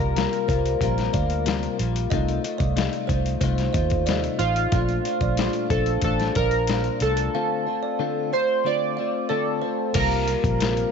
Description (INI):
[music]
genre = indie pop, bedroom pop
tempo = 92 BPM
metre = 4/4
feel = straight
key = unclear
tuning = A4 = 440 Hz
[part]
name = chorused retro synth keys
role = melody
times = 0.0-10.9 s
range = F4 to D5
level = -25 LUFS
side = right 2 dB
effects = wide subtle chorus, tape echo
[part]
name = kalimba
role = second line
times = 0.0-9.8 s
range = C5 to F5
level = -31 LUFS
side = right 13 dB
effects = lush chorus, tape echo
[part]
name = direct-recorded clean electric guitar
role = accompaniment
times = 0.0-10.9 s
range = Bb2 to F4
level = -28 LUFS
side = left 12 dB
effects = lush chorus, warbly pitch drift
[part]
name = vintage muted fingered electric bass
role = bass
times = 0.0-10.8 s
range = A1 to Eb2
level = -25 LUFS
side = right 2 dB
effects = none
[part]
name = dusty soul sampler-style drum kit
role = drums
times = 0.2-10.9 s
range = crash cymbal, hi-hat, kick drum, snare drum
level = -27 LUFS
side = left 2 dB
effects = overdrive
[sound]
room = light reverb, digital ambience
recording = 1960s-style stereo with parts hard left and right, nothing above 7.7 kHz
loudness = -21 LUFS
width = side -6 dB against mid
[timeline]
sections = 0.0-10.0 A section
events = none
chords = 0.0 C7sus4; 2.1 F7/C; 4.7 Bbmaj7; 7.3 Dm7; 10.0 C7sus4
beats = 0.16 0.81 1.47 | 2.12 2.77 3.42 4.08 | 4.73 5.38 6.04 6.69 | 7.34 8.00 8.65 9.30 | 9.95 10.61